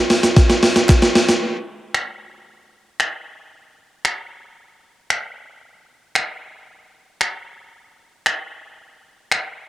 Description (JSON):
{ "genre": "pop", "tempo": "114 BPM", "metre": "4/4", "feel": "straight", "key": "none", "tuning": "none", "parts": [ { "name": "gated 80s digital drum machine", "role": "drums", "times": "0.1-9.4 s", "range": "finger snaps, hi-hat, kick drum, shaker, snare drum", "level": "-14 LUFS", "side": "equal", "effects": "gated reverb, gated reverb snare, overdrive, cassette tape" }, { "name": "group handclap", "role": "percussion", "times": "0.9-1.0 s", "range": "none", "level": "-29 LUFS", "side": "right 1 dB", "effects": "none" } ], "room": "light reverb, digital ambience", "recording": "home recording on cassette", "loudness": "-16 LUFS", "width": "side -15 dB against mid", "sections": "0.0-1.4 A section; 1.4-9.7 B section", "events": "drop 0.0-1.4; drum fill 0.0-1.4", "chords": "none", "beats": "0.36 0.89 | 1.42 1.94 2.47 3.00 | 3.52 4.05 4.58 5.10 | 5.63 6.15 6.68 7.21 | 7.73 8.26 8.79 9.31" }